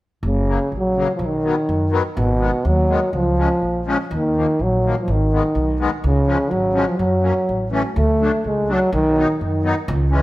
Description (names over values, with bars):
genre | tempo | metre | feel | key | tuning
alpine folk, alpine dance band | 125 BPM | 2/4 | straight | F# major | A4 = 440 Hz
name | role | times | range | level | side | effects
upright bass | bass | 0.2-10.2 s | F#1 to F#2 | -21 LUFS | equal | none
clear euphonium | melody | 0.3-10.2 s | B2 to A3 | -19 LUFS | equal | tape echo
musette accordion | accompaniment | 0.5-10.2 s | C#3 to D#4 | -24 LUFS | left 3 dB | none
room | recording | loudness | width
moderate recital hall reverb, RT60 1.8 s | none | -16 LUFS | side -17 dB against mid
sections
0.2-8.0 A section; 8.0-10.2 B section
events
none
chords
0.2 F#; 1.2 B; 2.2 G#m; 3.1 C#6; 4.1 D#sus2; 5.1 G#m; 6.0 C#; 7.0 F#; 7.5 A; 8.0 D; 8.9 B